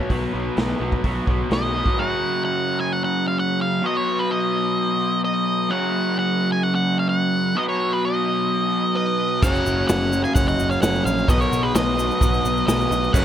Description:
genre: classic rock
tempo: 129 BPM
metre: 4/4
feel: straight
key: unclear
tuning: A4 = 437 Hz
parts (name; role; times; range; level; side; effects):
- overdriven slide guitar; second line; 0.0-1.0 s; B4; -34 LUFS; left 2 dB; none
- raw garage guitar; riff; 0.0-13.2 s; F#2 to B3; -22 LUFS; equal; overdrive
- fuzz picked electric bass; bass; 0.1-1.8, 9.4-13.2 s; F#1 to B1; -26 LUFS; equal; overdrive
- raw garage drum kit; drums; 0.1-2.0, 9.4-13.2 s; crash cymbal, hi-hat, kick drum, snare drum; -23 LUFS; equal; none
- octave-fuzz lead guitar; melody; 1.5-13.2 s; B4 to G#5; -23 LUFS; equal; distortion
- fuzz lead guitar; second line; 9.0-13.2 s; G#4 to E#5; -29 LUFS; right 4 dB; distortion
- picked steel-string acoustic guitar; accompaniment; 9.4-13.2 s; F#2 to F#4; -30 LUFS; left 1 dB; none
- tube shaker; percussion; 9.4-13.2 s; none; -37 LUFS; left 6 dB; none
room: little or no reverb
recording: none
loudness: -18 LUFS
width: side -10 dB against mid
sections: 0.0-2.0 A section; 2.0-13.2 B section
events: none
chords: 0.0 B; 2.0 F#5; 3.8 B; 5.7 F#5; 7.6 B; 9.4 F#; 11.3 B

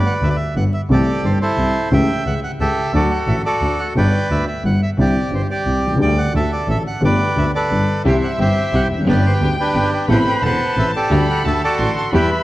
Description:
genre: tango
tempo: 176 BPM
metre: 3/4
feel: rubato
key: G major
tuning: A4 = 440 Hz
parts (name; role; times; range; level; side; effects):
- bandoneon; melody; 0.0-12.4 s; D4 to A5; -20 LUFS; right 1 dB; none
- dark upright piano; accompaniment; 0.2-12.3 s; E1 to G4; -20 LUFS; left 1 dB; none
- rich double bass; bass; 0.2-12.3 s; E1 to E2; -20 LUFS; right 1 dB; none
- rich violin; second line; 8.0-12.4 s; E5 to C6; -25 LUFS; left 2 dB; none
- muted studio string section; stabs; 8.1-12.3 s; A3 to A4; -26 LUFS; right 2 dB; none
room: moderate scoring stage reverb, RT60 2.0 s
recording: worn, warbling old tape, cassette tape, vinyl crackle, warbly pitch drift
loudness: -15 LUFS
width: side -16 dB against mid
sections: 0.0-12.4 A section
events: none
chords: 0.0 G; 0.9 C6; 1.9 A7/C#; 2.9 D; 4.0 G; 5.0 Cadd9; 6.0 Dsus4; 6.3 D5; 7.0 Gadd9; 8.0 C; 9.1 G; 10.1 Amadd9; 11.1 Dsus4; 11.4 D

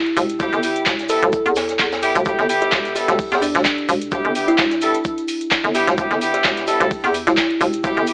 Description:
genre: bass house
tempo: 129 BPM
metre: 4/4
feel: swing 55% on 16ths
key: E minor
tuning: A4 = 439 Hz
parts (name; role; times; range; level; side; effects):
- hollow knocking FM bass; bass; 0.0-8.1 s; E1 to E2; -20 LUFS; equal; overdrive, sidechain pumping
- house drum kit; drums; 0.1-8.1 s; handclaps, hi-hat; -21 LUFS; equal; none
- kalimba; melody; 0.2-7.8 s; D4 to A4; -22 LUFS; equal; digital delay
- jazz brush drum kit; drums; 0.2-8.1 s; hi-hat, shaker, snare drum; -29 LUFS; equal; high-pass filter on hats, high-pass filter on snare, high-pass filter on perc, high-pass filter on room
- cabasa; percussion; 0.2-8.1 s; none; -36 LUFS; equal; none
- warm horn section; stabs; 0.4-8.1 s; G3 to A4; -20 LUFS; equal; sidechain pumping, digital delay
- electronic kick drum; drums; 0.4-7.9 s; none; -25 LUFS; equal; overdrive
room: light reverb, small room reverb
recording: AM radio sound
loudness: -15 LUFS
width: side -35 dB against mid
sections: 0.0-8.1 A section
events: none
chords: 0.0 Em

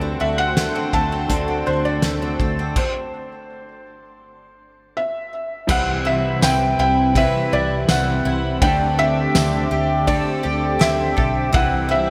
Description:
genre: dream pop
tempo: 82 BPM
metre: 4/4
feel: straight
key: C lydian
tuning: A4 = 441 Hz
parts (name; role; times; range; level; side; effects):
- felt-muted upright piano; melody; 0.0-12.1 s; C5 to A5; -24 LUFS; equal; shimmer reverb, digital delay
- semi-hollow electric guitar; accompaniment; 0.0-12.1 s; C3 to B4; -30 LUFS; equal; harmonic tremolo, lush chorus, shimmer reverb
- lush unison pad; sustained chords; 0.0-12.1 s; C3 to E5; -29 LUFS; equal; chorus, shimmer reverb
- picked twelve-string acoustic guitar; arpeggios; 0.0-12.1 s; C3 to B4; -27 LUFS; equal; analog chorus, shimmer reverb, digital delay
- vintage muted fingered electric bass; bass; 0.0-12.1 s; B1 to D2; -27 LUFS; equal; none
- loose indie drum kit; drums; 0.6-11.7 s; crash cymbal, hi-hat, kick drum, ride cymbal, snare drum, tambourine; -25 LUFS; equal; gated reverb
room: wet plate reverb, RT60 3.3 s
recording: bright 1980s-style digital production, faint mains hum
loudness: -19 LUFS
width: mono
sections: 0.0-5.7 A section; 5.7-12.1 B section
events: stop 2.8-5.7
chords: 0.0 D7; 2.8 N.C.; 5.7 Cmaj7; 8.6 D7sus4; 11.5 Cmaj7

